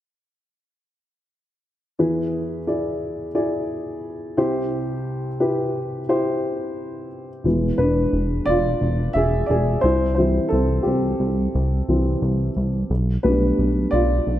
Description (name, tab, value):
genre	pop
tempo	88 BPM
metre	4/4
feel	straight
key	unclear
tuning	A4 = 439 Hz
part	dark upright piano	accompaniment	2.0-14.4 s	C2 to E5	-21 LUFS	equal	none
part	chorused synth bass	bass	7.4-14.4 s	E1 to C2	-21 LUFS	equal	none
room	moderate lush hall reverb, RT60 1.9 s, studio ambience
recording	none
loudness	-19 LUFS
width	side -12 dB against mid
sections	2.0-7.5 A section; 7.5-14.4 B section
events	upright piano solo 7.5-14.4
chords	2.0 E; 4.4 C; 7.5 E; 9.8 C; 12.9 Gadd9/B